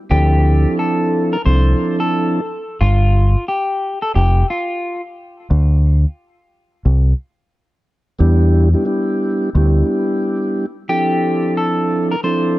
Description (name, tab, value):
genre	hip hop, boom-bap hip-hop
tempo	89 BPM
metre	4/4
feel	swing 61% on 16ths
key	D minor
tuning	A4 = 440 Hz
part	electric guitar at the edge of break-up	melody	0.1-5.0, 10.9-12.6 s	F4 to C5	-20 LUFS	left 1 dB	high-pass filter, low-pass filter
part	mellow tonewheel organ	accompaniment	0.1-2.4, 8.2-12.6 s	F3 to A4	-17 LUFS	right 1 dB	slow rotary speaker, high-pass filter, low-pass filter
part	deep dub fingered electric bass	bass	0.1-9.8 s	F1 to E2	-12 LUFS	equal	none
room	little or no reverb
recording	dry, gritty hardware recording, cassette tape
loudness	-14 LUFS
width	side -17 dB against mid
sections	0.1-12.6 A section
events	none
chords	0.1 Dm7; 2.8 Fsus2; 5.5 Csus2; 8.2 Em7; 10.9 Dm7